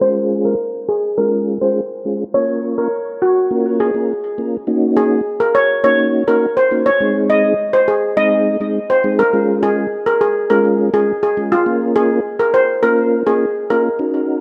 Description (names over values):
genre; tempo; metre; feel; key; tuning
dancehall; 103 BPM; 4/4; straight; Eb dorian; A4 = 440 Hz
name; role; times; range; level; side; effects
steel pan; melody; 0.0-13.8 s; F4 to Eb5; -17 LUFS; equal; digital delay
mellow tonewheel organ; accompaniment; 0.0-14.4 s; Ab3 to Bb4; -20 LUFS; equal; chorus vibrato, slow rotary speaker
room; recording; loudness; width
light reverb, small room ambience; low-pass filter; -16 LUFS; mono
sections
0.0-4.7 A section; 4.7-14.4 B section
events
filter sweep 0.0-4.7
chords
0.0 Db; 2.3 Bbm; 4.7 Ebm7; 7.0 Ab; 9.3 Db; 11.7 Bbm